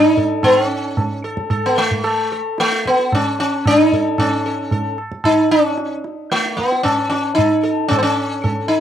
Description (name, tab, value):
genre	indian classical, Hindustani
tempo	112 BPM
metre	7/4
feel	straight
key	unclear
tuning	A4 = 443 Hz
part	sitar	melody	0.0-8.8 s	A3 to A4	-15 LUFS	equal	none
part	tabla	percussion	0.2-8.6 s	none	-22 LUFS	right 2 dB	none
room	light reverb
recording	dry, close 1970s-style studio recording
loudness	-15 LUFS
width	side -10 dB against mid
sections	0.0-8.8 A section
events	none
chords	none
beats	| 0.44 0.98 1.51 2.05 2.58 3.11 3.65 | 4.18 4.72 5.25 5.78 6.32 6.85 7.38 | 7.91 8.44